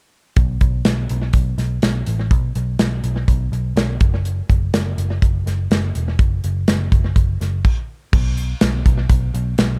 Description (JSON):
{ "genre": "jangly indie pop", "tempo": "124 BPM", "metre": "4/4", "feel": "straight", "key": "unclear", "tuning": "A4 = 441 Hz", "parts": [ { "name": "vintage muted picked electric bass", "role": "bass", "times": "0.4-9.8 s", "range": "E1 to B1", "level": "-23 LUFS", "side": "equal", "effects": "none" }, { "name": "modern studio drum kit", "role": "drums", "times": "0.4-9.7 s", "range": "crash cymbal, hi-hat, kick drum, snare drum", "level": "-19 LUFS", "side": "equal", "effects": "tape echo" } ], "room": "light reverb", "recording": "echo-heavy mix", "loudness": "-19 LUFS", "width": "mono", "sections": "0.4-8.1 A section; 8.1-9.8 B section", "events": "none", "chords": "none" }